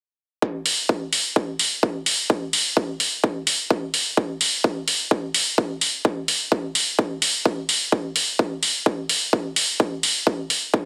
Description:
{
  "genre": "EDM, festival progressive house",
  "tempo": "128 BPM",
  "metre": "4/4",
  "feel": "straight",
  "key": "none",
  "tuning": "none",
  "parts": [
    { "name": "electronic kick drum", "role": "drums", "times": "0.4-10.8 s", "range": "none", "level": "-24 LUFS", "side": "equal", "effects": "high-pass filter on kick, high-pass filter on room" },
    { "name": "electronic hi-hat", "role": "drums", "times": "0.7-10.6 s", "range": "none", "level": "-22 LUFS", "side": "equal", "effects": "none" }
  ],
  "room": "little or no reverb",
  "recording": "dense, heavily limited modern master",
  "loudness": "-22 LUFS",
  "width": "mono",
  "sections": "0.4-10.9 A section",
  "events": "none",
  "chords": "none",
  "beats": "| 0.42 0.89 1.36 1.83 | 2.30 2.77 3.24 3.71 | 4.17 4.64 5.11 5.58 | 6.05 6.52 6.99 7.46 | 7.92 8.39 8.86 9.33 | 9.80 10.27 10.74"
}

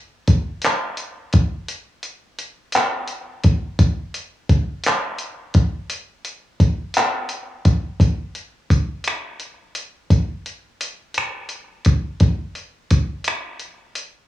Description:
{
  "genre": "R&B",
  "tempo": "57 BPM (dotted quarters)",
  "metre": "6/8",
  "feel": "straight",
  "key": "none",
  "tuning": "none",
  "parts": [
    { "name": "dusty soul sampler-style drum kit", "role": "drums", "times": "0.3-14.1 s", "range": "finger snaps, handclaps, hi-hat, kick drum", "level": "-17 LUFS", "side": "equal", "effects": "cassette tape" }
  ],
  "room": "moderate spring reverb, RT60 1.4 s",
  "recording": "home recording on cassette, small room ambience",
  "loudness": "-18 LUFS",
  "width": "side -14 dB against mid",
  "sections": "0.0-8.0 A section; 8.0-14.3 B section",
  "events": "none",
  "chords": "none",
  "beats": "0.63 | 1.68 2.74 | 3.79 4.84 | 5.89 6.95 | 8.00 9.05 | 10.11 11.16 | 12.21 13.26"
}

